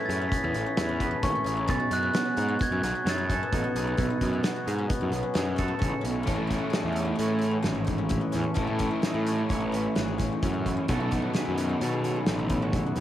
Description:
math rock and midwest emo; 131 BPM; 5/4; straight; A lydian; A4 = 439 Hz
glockenspiel with rubber mallets; melody; 0.0-5.8 s; C#6 to B6; -31 LUFS; equal; cassette tape
twangy electric guitar; accompaniment; 0.0-13.0 s; A2 to D#5; -33 LUFS; right 6 dB
guzheng; arpeggios; 0.0-13.0 s; A3 to G#4; -34 LUFS; left 7 dB
fuzz picked electric bass; bass; 0.1-13.0 s; G#1 to B2; -30 LUFS; equal; overdrive
loose indie drum kit; drums; 0.1-13.0 s; hi-hat, kick drum, snare drum; -31 LUFS; equal
overdriven electric guitar; riff; 6.3-13.0 s; A2 to A4; -30 LUFS; equal
studio reverb; home recording on cassette; -25 LUFS; side -12 dB against mid
0.0-6.3 A section; 6.3-13.0 B section
0.0 Amaj9; 1.7 B13; 6.3 Amaj7; 10.9 B7sus4
0.32 0.78 1.24 | 1.70 2.15 2.61 3.07 3.53 | 3.99 4.45 4.91 5.36 5.82 | 6.28 6.74 7.20 7.66 8.12 | 8.58 9.04 9.50 9.96 10.42 | 10.88 11.34 11.80 12.26 12.72

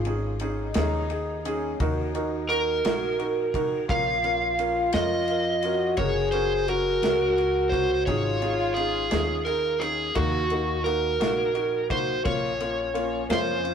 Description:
six-eight pop ballad; 57 BPM (dotted quarters); 6/8; straight; Bb minor; A4 = 439 Hz
warm French horn section; second line; 0.0-13.7 s; Db4 to Ab4; -29 LUFS; left 2 dB; tape echo
upright bass; bass; 0.0-13.7 s; Gb1 to F2; -32 LUFS; equal
felt-muted upright piano; accompaniment; 0.1-13.7 s; Bb3 to Bb4; -30 LUFS; right 1 dB
modern studio drum kit; drums; 0.1-13.7 s; kick drum, ride cymbal, snare drum; -33 LUFS; left 1 dB
overdriven slide guitar; melody; 2.5-13.7 s; Gb4 to F5; -26 LUFS; right 2 dB
moderate stone room reverb, RT60 1.2 s; rough rehearsal-room recording; -23 LUFS; side -7 dB against mid
0.0-13.7 A section
0.0 Absus4; 1.8 Ebm; 3.9 Bbm; 6.0 Gb; 8.1 Absus4; 10.2 Ebm; 12.3 Bbm
0.76 | 1.80 2.85 | 3.89 4.94 | 5.98 7.03 | 8.07 9.12 | 10.16 11.21 | 12.25 13.30

